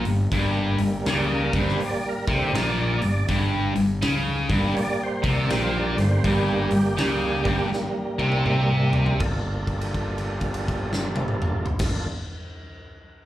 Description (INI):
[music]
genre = blues rock power trio and southern rock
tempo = 81 BPM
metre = 4/4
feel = swing 64% on 8ths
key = G minor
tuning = A4 = 441 Hz
[part]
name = distorted electric guitar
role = riff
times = 0.0-9.2 s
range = G2 to C#3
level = -23 LUFS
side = equal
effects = distortion, slapback echo
[part]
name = fuzz fingered electric bass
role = bass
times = 0.0-12.1 s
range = G1 to C#2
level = -27 LUFS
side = equal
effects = overdrive
[part]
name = big rock drum kit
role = drums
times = 0.0-12.0 s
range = crash cymbal, hi-hat, kick drum, snare drum, toms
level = -29 LUFS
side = equal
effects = none
[part]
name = overdriven tonewheel organ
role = sustained chords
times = 0.3-12.1 s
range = D3 to D5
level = -28 LUFS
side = right 2 dB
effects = slow rotary speaker, chorus vibrato
[sound]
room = moderate club reverb, RT60 0.6 s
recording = live gig heard through the venue's PA, club reverb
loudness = -21 LUFS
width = side -14 dB against mid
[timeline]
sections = 0.0-9.2 A section; 9.2-12.2 B section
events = tonewheel organ solo 0.0-9.2; drum fill 7.7-9.2; held note 9.2-11.7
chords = 0.0 Gm; 9.2 Gm7